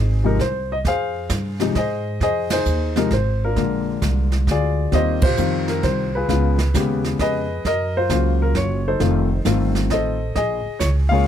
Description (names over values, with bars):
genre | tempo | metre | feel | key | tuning
jazz piano trio | 132 BPM | 3/4 | swing 66% on 8ths | F minor | A4 = 441 Hz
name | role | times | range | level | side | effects
warm concert grand piano | melody | 0.0-11.3 s | C3 to F5 | -21 LUFS | left 3 dB | none
upright bass | bass | 0.0-11.2 s | F1 to Ab2 | -21 LUFS | right 1 dB | none
jazz brush drum kit | drums | 0.4-11.3 s | brushed snare drum, hi-hat, kick drum, ride cymbal, snare drum | -25 LUFS | right 3 dB | none
room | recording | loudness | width
little or no reverb | close, detailed microphones | -18 LUFS | side -10 dB against mid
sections
0.0-2.2 A section; 2.2-11.3 B section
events
band accent 2.4, 5.2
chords
0.0 Fm7; 3.6 Bb7; 4.9 Eb69; 6.3 Db7; 7.6 Gbmaj7; 9.0 F7; 10.4 Bbm7